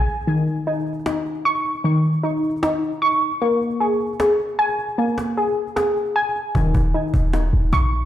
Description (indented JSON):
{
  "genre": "hip hop, trap",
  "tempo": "153 BPM",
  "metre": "4/4",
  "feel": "half-time",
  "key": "unclear",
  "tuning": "A4 = 443 Hz",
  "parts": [
    { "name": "warbly dusty pluck", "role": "arpeggios", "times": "0.0-8.1 s", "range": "Eb3 to Db6", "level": "-19 LUFS", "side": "equal", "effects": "chorus, low-pass filter, ping-pong delay" },
    { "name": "clean 808-style bass", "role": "bass", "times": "0.0-0.1, 6.5-8.1 s", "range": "Eb1 to Bb1", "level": "-18 LUFS", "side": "equal", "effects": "none" },
    { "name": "cajon", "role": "drums", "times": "0.1-8.1 s", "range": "none", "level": "-31 LUFS", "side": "equal", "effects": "none" }
  ],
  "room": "light reverb, small room ambience",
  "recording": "played on a big sound system in a bare room, stone room reverb",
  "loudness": "-18 LUFS",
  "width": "side -12 dB against mid",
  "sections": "0.3-8.1 A section",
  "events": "kick muted 0.3-6.5",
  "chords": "0.3 Dbsus2/Eb; 3.4 Absus2/Bb; 6.5 Eb5"
}